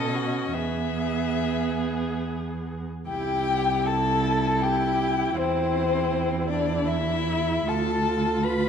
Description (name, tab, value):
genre	classical, slow romantic movement for string quartet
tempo	68-82 BPM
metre	3/4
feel	rubato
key	E major, C major from 3.1 s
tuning	A4 = 441 Hz
part	warm violin	melody	0.0-8.7 s	C5 to B5	-29 LUFS	left 8 dB	none
part	warm violin	second line	0.0-8.7 s	C4 to B4	-28 LUFS	left 2 dB	none
part	rich viola	accompaniment	0.0-8.7 s	B3 to F4	-30 LUFS	right 5 dB	none
part	warm cello	bass	0.0-8.7 s	C2 to B2	-28 LUFS	right 3 dB	none
room	wet scoring stage reverb, RT60 1.8 s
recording	dark, warm production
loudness	-23 LUFS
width	side -7 dB against mid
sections	0.0-3.1 A section; 3.1-8.7 B section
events	none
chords	0.0 B9; 0.5 E; 3.1 C; 5.4 C/E; 7.7 Dm